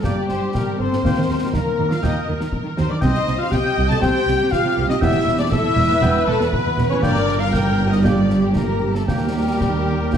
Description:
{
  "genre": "cinematic, heroic adventure film score",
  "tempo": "120 BPM",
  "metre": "4/4",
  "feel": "straight",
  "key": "C dorian",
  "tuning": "A4 = 438 Hz",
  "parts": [
    { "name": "warm symphonic violin section", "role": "melody", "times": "0.0-10.2 s", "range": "G4 to A5", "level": "-30 LUFS", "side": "left 6 dB", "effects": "none" },
    { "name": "clear oboe", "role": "second line", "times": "0.0-10.2 s", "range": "G5", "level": "-34 LUFS", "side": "right 2 dB", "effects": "none" },
    { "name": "mellow clarinet", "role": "second line", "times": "0.0-10.2 s", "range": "Bb3 to C4", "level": "-32 LUFS", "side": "left 2 dB", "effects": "none" },
    { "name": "mellow flute section", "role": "second line", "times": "0.0-10.1 s", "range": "G5 to A6", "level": "-28 LUFS", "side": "left 2 dB", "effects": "none" },
    { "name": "warm symphonic violin section", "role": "second line", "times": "0.0-10.2 s", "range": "G4 to A5", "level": "-30 LUFS", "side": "left 6 dB", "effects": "none" },
    { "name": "warm symphonic viola section", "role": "accompaniment", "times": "0.0-10.2 s", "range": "G4 to Eb5", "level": "-26 LUFS", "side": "right 1 dB", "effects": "none" },
    { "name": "clear French horn section", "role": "sustained chords", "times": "0.0-10.2 s", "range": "G3 to A4", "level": "-25 LUFS", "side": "left 4 dB", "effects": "none" },
    { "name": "warm trumpet", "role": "stabs", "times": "0.0-10.2 s", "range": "G4 to A5", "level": "-28 LUFS", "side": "right 2 dB", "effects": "none" },
    { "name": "rich studio double bass section", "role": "bass", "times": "0.0-10.2 s", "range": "E1 to Eb2", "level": "-23 LUFS", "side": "right 2 dB", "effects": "none" },
    { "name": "warm symphonic cello section", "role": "bass", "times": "0.0-10.2 s", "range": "Eb2 to Eb3", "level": "-23 LUFS", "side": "right 2 dB", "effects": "none" },
    { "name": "concert snare drum, concert bass drum and clash cymbals", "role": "drums", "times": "0.0-10.2 s", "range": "none", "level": "-26 LUFS", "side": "equal", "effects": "none" }
  ],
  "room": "moderate scoring stage reverb, RT60 1.7 s",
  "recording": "dark, warm production",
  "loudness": "-16 LUFS",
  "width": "side -8 dB against mid",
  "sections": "0.0-10.2 A section",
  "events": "none",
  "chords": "0.0 Gm; 1.0 Eb5; 3.0 Cm; 5.0 Em; 7.0 Gm; 9.1 Eb"
}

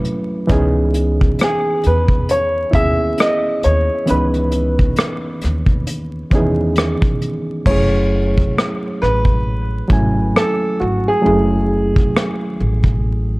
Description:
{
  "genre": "lo-fi hip hop",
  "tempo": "67 BPM",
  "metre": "4/4",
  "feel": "swing 59% on 16ths",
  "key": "F# dorian",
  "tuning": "A4 = 437 Hz",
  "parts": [
    { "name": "overdriven reed electric piano", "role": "accompaniment", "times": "0.0-13.4 s", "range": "D#3 to G#5", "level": "-20 LUFS", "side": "right 1 dB", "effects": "cassette tape" },
    { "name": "vintage brush drum kit", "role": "drums", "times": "0.0-13.0 s", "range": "crash cymbal, hi-hat, kick drum, rim click", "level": "-18 LUFS", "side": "equal", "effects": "none" },
    { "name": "upright bass", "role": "bass", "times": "0.5-13.4 s", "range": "F#1 to E2", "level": "-19 LUFS", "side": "equal", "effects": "none" },
    { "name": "dark upright piano", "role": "melody", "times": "1.4-13.4 s", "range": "F#4 to E5", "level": "-20 LUFS", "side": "equal", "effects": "analog delay" }
  ],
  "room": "light reverb, small room ambience",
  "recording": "vinyl crackle",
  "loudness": "-14 LUFS",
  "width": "side -22 dB against mid",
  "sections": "0.0-7.7 A section; 7.7-13.4 A section",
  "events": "hi-hats muted 7.7-13.4",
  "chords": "0.0 F#m9; 0.5 C#m9; 7.7 F#m9"
}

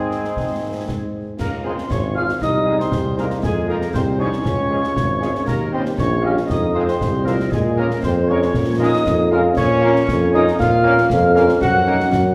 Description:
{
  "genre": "military-style march for wind band",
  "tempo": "117 BPM",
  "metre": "2/4",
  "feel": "straight",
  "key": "unclear",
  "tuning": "A4 = 440 Hz",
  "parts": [
    { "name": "dark trumpet section", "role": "melody", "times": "0.0-12.0 s", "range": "C4 to Eb5", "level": "-36 LUFS", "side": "equal", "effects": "none" },
    { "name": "warm euphonium", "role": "second line", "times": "0.0-12.3 s", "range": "Ab3 to Gb4", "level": "-25 LUFS", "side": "equal", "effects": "none" },
    { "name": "warm woodwind section", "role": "second line", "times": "0.0-12.3 s", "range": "Ab4 to Gb5", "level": "-29 LUFS", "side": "equal", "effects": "none" },
    { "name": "warm French horn section", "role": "accompaniment", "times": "0.0-12.0 s", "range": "Eb3 to G4", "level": "-30 LUFS", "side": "equal", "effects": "none" },
    { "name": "warm tuba", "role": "bass", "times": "0.0-12.3 s", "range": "Ab1 to Bb2", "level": "-22 LUFS", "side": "equal", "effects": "none" },
    { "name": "concert snare drum, concert bass drum and clash cymbals", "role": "drums", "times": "0.1-12.3 s", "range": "none", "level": "-28 LUFS", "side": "equal", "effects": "none" },
    { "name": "mellow piccolo", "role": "second line", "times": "1.4-12.3 s", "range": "Ab5 to Gb6", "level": "-29 LUFS", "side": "equal", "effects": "none" },
    { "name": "clear trombone section", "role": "sustained chords", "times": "1.7-12.0 s", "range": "F3 to F4", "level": "-32 LUFS", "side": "equal", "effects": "none" }
  ],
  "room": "wet recital hall reverb, RT60 1.7 s",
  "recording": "recorded in a church or concert hall",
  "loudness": "-18 LUFS",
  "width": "mono",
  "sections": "0.0-1.4 A section; 1.4-12.3 B section",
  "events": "none",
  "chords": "0.0 Ab; 1.4 Db; 2.4 Ab/C; 3.4 Fm7; 4.5 Db; 5.5 Eb7; 6.5 Fm; 7.5 Bbm7; 9.6 Bbm; 11.6 Ebm7/Gb"
}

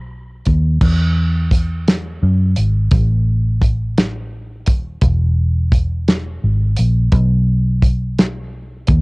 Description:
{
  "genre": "slow six-eight R&B",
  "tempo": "57 BPM (dotted quarters)",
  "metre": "6/8",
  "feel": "straight",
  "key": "E major",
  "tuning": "A4 = 440 Hz",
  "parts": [
    { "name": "vintage muted fingered electric bass", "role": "bass", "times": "0.0-9.0 s", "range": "D#1 to F#2", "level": "-16 LUFS", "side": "equal", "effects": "transformer saturation" },
    { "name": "damped 70s drum kit", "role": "drums", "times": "0.5-9.0 s", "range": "crash cymbal, hi-hat, kick drum, snare drum", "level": "-15 LUFS", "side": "equal", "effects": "none" }
  ],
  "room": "little or no reverb",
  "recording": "home recording on cassette",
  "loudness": "-14 LUFS",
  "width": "side -33 dB against mid",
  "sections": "0.8-9.0 A section",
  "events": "none",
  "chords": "none"
}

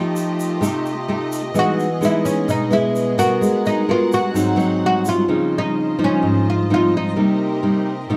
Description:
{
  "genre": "bossa nova",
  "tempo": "128 BPM",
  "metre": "4/4",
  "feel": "straight",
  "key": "unclear",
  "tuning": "A4 = 440 Hz",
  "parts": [
    { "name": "oud", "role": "melody", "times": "0.0-8.2 s", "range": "C#4 to F#4", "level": "-23 LUFS", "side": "equal", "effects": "none" },
    { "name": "nylon-string guitar", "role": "accompaniment", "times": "0.0-8.2 s", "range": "G#2 to A#4", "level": "-21 LUFS", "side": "equal", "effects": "none" },
    { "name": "warm symphonic violin section", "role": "sustained chords", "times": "0.0-8.2 s", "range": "A3 to F#5", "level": "-32 LUFS", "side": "equal", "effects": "none" },
    { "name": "egg shaker", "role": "percussion", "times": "0.2-5.3 s", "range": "none", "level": "-40 LUFS", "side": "equal", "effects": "none" }
  ],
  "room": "moderate studio reverb, RT60 0.7 s",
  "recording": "dark, warm production",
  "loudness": "-19 LUFS",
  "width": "mono",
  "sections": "0.0-5.3 A section; 5.3-8.2 B section",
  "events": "none",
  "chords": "0.0 F9; 1.6 Emaj7; 3.4 G#m9; 4.4 G#7; 5.3 Dbmaj9; 7.2 Cm7"
}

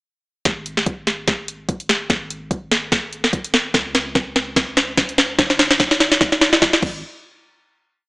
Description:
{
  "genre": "future bass",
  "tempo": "146 BPM",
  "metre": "4/4",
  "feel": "swing 55% on 16ths, half-time",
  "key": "unclear",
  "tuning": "A4 = 441 Hz",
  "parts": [
    { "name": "warm 808-style bass", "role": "bass", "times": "0.5-7.0 s", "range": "Gb1 to Db2", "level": "-39 LUFS", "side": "equal", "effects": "sidechain pumping" },
    { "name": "electronic kick drum", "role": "drums", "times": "0.5-6.9 s", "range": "none", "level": "-23 LUFS", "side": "equal", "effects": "overdrive" },
    { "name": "trap drum kit", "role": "drums", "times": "0.5-6.9 s", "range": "crash cymbal, hi-hat, snare drum", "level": "-16 LUFS", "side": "equal", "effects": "none" }
  ],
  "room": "moderate digital room reverb, RT60 0.9 s",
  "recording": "small speaker sound",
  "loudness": "-16 LUFS",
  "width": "side -30 dB against mid",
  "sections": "0.5-7.0 build; 7.0-8.1 final hit",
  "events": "build-up 0.5-7.0; drum fill 0.5-7.0",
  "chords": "none"
}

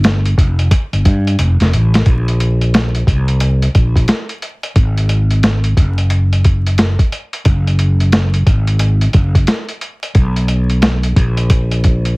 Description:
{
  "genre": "hip hop, jazz-hop",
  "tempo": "89 BPM",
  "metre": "4/4",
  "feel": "swing 64% on 16ths",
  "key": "unclear",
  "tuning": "A4 = 441 Hz",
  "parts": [
    { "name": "fretless electric bass", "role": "bass", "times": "0.0-12.1 s", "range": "F1 to G2", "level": "-13 LUFS", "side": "equal", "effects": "none" },
    { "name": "lo-fi sampler-style drum kit", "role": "drums", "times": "0.0-12.2 s", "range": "hi-hat, kick drum, snare drum", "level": "-14 LUFS", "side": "equal", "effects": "none" }
  ],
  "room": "little or no reverb",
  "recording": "heavily compressed radio sound, vinyl crackle",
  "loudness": "-11 LUFS",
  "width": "side -27 dB against mid",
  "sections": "0.0-2.1 A section; 2.1-12.2 B section",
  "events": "drum fill 1.4-2.1",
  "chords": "none"
}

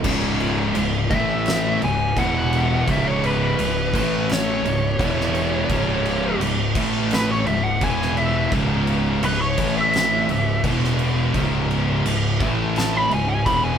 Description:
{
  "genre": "stoner and doom metal",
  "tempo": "85 BPM",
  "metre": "4/4",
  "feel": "straight",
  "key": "C# minor",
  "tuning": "A4 = 440 Hz",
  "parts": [
    { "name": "heavy high-gain guitar", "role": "riff", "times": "0.0-13.8 s", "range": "C#2 to A3", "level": "-29 LUFS", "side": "left 2 dB", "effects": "distortion" },
    { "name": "thick fuzz guitar", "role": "riff", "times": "0.0-13.8 s", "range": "C#2 to A3", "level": "-25 LUFS", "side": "left 8 dB", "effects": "distortion" },
    { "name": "thick fuzz guitar", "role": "riff", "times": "0.0-13.8 s", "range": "C#2 to A3", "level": "-25 LUFS", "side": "right 7 dB", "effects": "distortion" },
    { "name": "fuzz fingered electric bass", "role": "bass", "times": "0.0-13.8 s", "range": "C#1 to A1", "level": "-27 LUFS", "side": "equal", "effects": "overdrive, tube saturation" },
    { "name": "oversized low-tuned drum kit", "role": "drums", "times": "0.0-13.6 s", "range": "crash cymbal, kick drum, snare drum", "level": "-25 LUFS", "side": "right 1 dB", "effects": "none" },
    { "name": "fuzz lead guitar", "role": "melody", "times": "1.1-13.8 s", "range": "B4 to B5", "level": "-23 LUFS", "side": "equal", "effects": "wah, distortion" }
  ],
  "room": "light reverb",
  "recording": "band playing live in one room",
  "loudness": "-18 LUFS",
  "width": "side -8 dB against mid",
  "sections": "0.0-13.8 A section",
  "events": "lead electric guitar solo 0.0-13.8",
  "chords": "0.0 C#5; 1.1 A5; 1.8 C#5; 2.2 E5; 2.9 C#5; 3.9 A5; 4.6 C#5; 5.0 E5; 5.7 C#5; 6.8 A5; 7.5 C#m; 7.8 E5; 8.5 C#5; 9.6 A5; 10.3 C#m; 10.6 E5; 11.3 C#5; 12.4 A5; 13.1 C#5"
}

